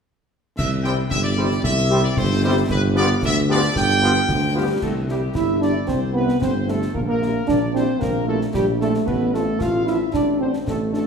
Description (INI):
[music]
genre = military-style march for wind band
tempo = 113 BPM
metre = 2/4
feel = straight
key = C major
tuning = A4 = 439 Hz
[part]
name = bright trumpet section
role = melody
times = 0.6-11.1 s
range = G4 to G5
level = -25 LUFS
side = right 1 dB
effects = none
[part]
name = mellow tuba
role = bass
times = 0.6-11.1 s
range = G1 to D2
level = -22 LUFS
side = right 1 dB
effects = none
[part]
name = concert snare drum, clash cymbals and concert bass drum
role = drums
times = 0.6-11.1 s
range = none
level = -30 LUFS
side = left 1 dB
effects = none
[part]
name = dark French horn section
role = accompaniment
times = 0.8-11.0 s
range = F3 to G4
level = -29 LUFS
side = left 4 dB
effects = none
[part]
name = warm trombone section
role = sustained chords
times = 0.8-4.6 s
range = F3 to C4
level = -28 LUFS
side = right 1 dB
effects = none
[part]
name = warm euphonium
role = second line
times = 4.6-11.1 s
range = G3 to F4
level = -21 LUFS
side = right 1 dB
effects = none
[sound]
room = wet recital hall reverb, RT60 1.6 s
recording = recorded in a church or concert hall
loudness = -17 LUFS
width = side -6 dB against mid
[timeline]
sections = 0.6-4.8 A section; 4.8-11.1 B section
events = none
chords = 0.6 C; 2.7 G7; 4.8 C; 7.0 C7/Bb; 9.1 F/A; 10.1 D7/A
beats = | 0.58 1.11 | 1.64 2.17 | 2.70 3.23 | 3.76 4.29 | 4.83 5.36 | 5.89 6.42 | 6.95 7.48 | 8.02 8.55 | 9.08 9.61 | 10.14 10.68